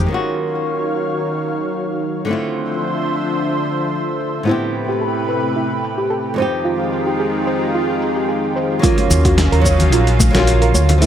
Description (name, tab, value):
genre	sunset chillout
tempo	110 BPM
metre	4/4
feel	straight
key	unclear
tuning	A4 = 440 Hz
part	flamenco guitar	accompaniment	0.0-11.1 s	F2 to G4	-21 LUFS	equal	auto-pan, digital delay
part	lush unison pad	sustained chords	0.0-11.1 s	C3 to F5	-21 LUFS	equal	chorus
part	overdriven fingered electric bass	bass	0.0, 9.1-11.1 s	Bb1 to Eb2	-14 LUFS	equal	none
part	dusty soul sampler-style drum kit	drums	0.1-11.1 s	hi-hat, shaker, snare drum	-21 LUFS	equal	low-pass filter on perc, low-pass filter on snare, low-pass filter on hats
part	soft round pluck	arpeggios	4.5-11.1 s	E4 to Db5	-22 LUFS	right 2 dB	chorus, digital delay
part	electronic kick drum	drums	8.8-10.3 s	none	-19 LUFS	equal	overdrive
part	congas and bongos	percussion	9.0-11.0 s	none	-23 LUFS	left 3 dB	none
room	light reverb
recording	none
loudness	-15 LUFS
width	side -10 dB against mid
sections	0.1-8.8 A section; 8.8-11.1 B section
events	filter sweep on analog synth pad 0.1-8.8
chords	0.1 Ebm9; 2.3 Dm9; 4.5 Am9; 6.4 Fm9; 8.8 Ebm9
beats	| 0.11 0.65 1.20 1.74 | 2.29 2.83 3.38 3.92 | 4.47 5.01 5.56 6.11 | 6.65 7.20 7.74 8.29 | 8.83 9.38 9.92 10.47 | 11.02